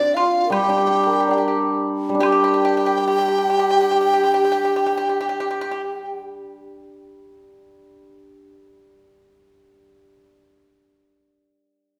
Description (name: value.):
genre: chinese traditional, Chinese chamber ensemble.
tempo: 61-88 BPM.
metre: 2/4.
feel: rubato.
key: G yu mode.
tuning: A4 = 440 Hz.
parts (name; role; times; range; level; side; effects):
mellow hollow large dizi; melody; 0.0-6.2 s; D5 to G5; -24 LUFS; equal; none.
breathy mellow low xiao; second line; 0.0-6.2 s; D4 to Bb4; -24 LUFS; equal; none.
pipa; second line; 0.0-5.8 s; D4 to G4; -30 LUFS; equal; none.
hammered dulcimer; accompaniment; 0.5-10.2 s; G3 to D5; -24 LUFS; equal; none.
woodblock; percussion; 0.5-2.7 s; none; -34 LUFS; equal; none.
room: wet recital hall reverb, RT60 1.7 s.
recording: none.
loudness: -19 LUFS.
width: mono.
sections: 0.0-2.2 A section; 2.2-6.0 B section.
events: slowing down 0.0-2.2.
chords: none.